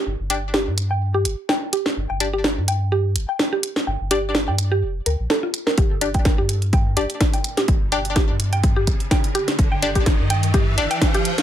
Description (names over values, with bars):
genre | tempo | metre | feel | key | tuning
minimal techno | 126 BPM | 4/4 | swing 54% on 16ths | unclear | A4 = 440 Hz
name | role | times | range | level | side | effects
round analog bass | bass | 0.1-10.9 s | F1 to G2 | -23 LUFS | equal | sidechain pumping
mallet-like synth pluck | riff | 0.3-11.2 s | F4 to G5 | -25 LUFS | right 1 dB | chorus, sidechain pumping, dub echo
wavetable chord stab | stabs | 0.3-10.8 s | D4 to D5 | -25 LUFS | left 2 dB | digital delay
house drum kit | drums | 0.3-11.4 s | hi-hat, snare drum | -23 LUFS | equal | overdrive
electronic kick drum | drums | 5.8-11.1 s | none | -19 LUFS | equal | overdrive
riser | sound effects | 7.7-11.4 s | none | -28 LUFS | equal | none
room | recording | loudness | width
light reverb | none | -18 LUFS | side -11 dB against mid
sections
0.0-11.4 A section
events
build-up 0.0-11.4; filter sweep on synth arpeggio sound 0.0-11.4; riser 7.7-11.4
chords
0.0 G5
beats
| 0.06 0.54 1.02 1.49 | 1.97 2.44 2.92 3.40 | 3.87 4.35 4.83 5.30 | 5.78 6.25 6.73 7.21 | 7.68 8.16 8.63 9.11 | 9.59 10.06 10.54 11.02